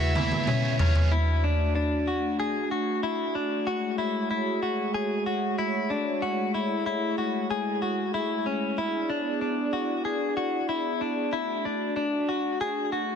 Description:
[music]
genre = dream pop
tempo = 94 BPM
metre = 4/4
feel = straight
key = D lydian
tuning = A4 = 439 Hz
[part]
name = overdriven slide guitar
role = melody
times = 0.0-0.8 s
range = E5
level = -35 LUFS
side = right 4 dB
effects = digital delay
[part]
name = cranked stack guitar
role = accompaniment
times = 0.0-1.1 s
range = C#3 to C#5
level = -37 LUFS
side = right 6 dB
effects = overdrive, tremolo, analog chorus
[part]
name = hollow soft pad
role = sustained chords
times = 0.0-13.2 s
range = C#3 to D5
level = -30 LUFS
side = right 1 dB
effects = chorus
[part]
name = direct-recorded clean electric guitar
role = arpeggios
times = 0.0-13.2 s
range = C#4 to G#4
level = -28 LUFS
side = left 3 dB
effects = wide subtle chorus, digital delay
[part]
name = toms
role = drums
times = 0.2-1.1 s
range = none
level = -24 LUFS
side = equal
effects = none
[sound]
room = light reverb, small room ambience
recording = dense, heavily limited modern master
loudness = -25 LUFS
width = side -7 dB against mid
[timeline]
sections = 0.0-1.1 A section; 1.1-13.2 B section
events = drum fill 0.0-1.1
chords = 0.0 C#m7; 1.1 D; 3.7 F#madd9; 6.2 Amaj7; 8.8 E7; 11.3 D

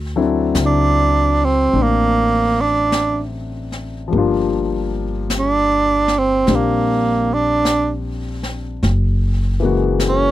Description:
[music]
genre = jazz ballad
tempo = 51 BPM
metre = 4/4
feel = swing 66% on 8ths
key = unclear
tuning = A4 = 441 Hz
[part]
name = upright bass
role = bass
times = 0.0-10.3 s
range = F#1 to D2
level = -20 LUFS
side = equal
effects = none
[part]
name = warm grand piano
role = accompaniment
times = 0.2-10.3 s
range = C#3 to A4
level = -21 LUFS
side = left 6 dB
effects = none
[part]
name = jazz brush drum kit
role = drums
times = 0.5-10.3 s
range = brushed snare drum, hi-hat, snare drum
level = -27 LUFS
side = left 1 dB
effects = none
[part]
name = clear tenor saxophone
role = melody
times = 0.7-10.3 s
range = Bb3 to D4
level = -16 LUFS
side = right 3 dB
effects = none
[sound]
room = little or no reverb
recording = dry, close 1970s-style studio recording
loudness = -15 LUFS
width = side -14 dB against mid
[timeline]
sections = 0.0-10.3 A section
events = tenor saxophone solo 0.0-10.3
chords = 0.0 D7; 4.1 Gm7; 8.8 F#9

